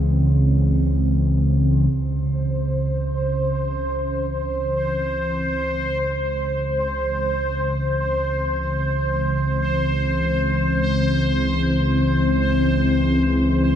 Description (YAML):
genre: dark ambient drone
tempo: free time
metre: none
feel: none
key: C# harmonic minor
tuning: A4 = 442 Hz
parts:
  - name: sweeping resonant pad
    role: sustained chords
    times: 0.0-13.8 s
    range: C#3 to B#3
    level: -22 LUFS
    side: equal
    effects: wide subtle chorus
  - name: deep rumbling drone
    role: drone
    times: 0.0-13.8 s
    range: C#2 to C#3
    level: -23 LUFS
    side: equal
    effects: built-in reverb
  - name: bubbling stepped-filter texture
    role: texture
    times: 2.4-13.8 s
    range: B#4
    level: -24 LUFS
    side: equal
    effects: chorus, built-in reverb, shimmer reverb
room: moderate huge ambient reverb, RT60 7.3 s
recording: in a vast, echoing space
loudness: -18 LUFS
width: side -9 dB against mid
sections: 0.0-1.9 A section; 1.9-13.8 B section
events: filter sweep on synth drone 1.9-13.8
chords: 0.0 C#m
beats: free time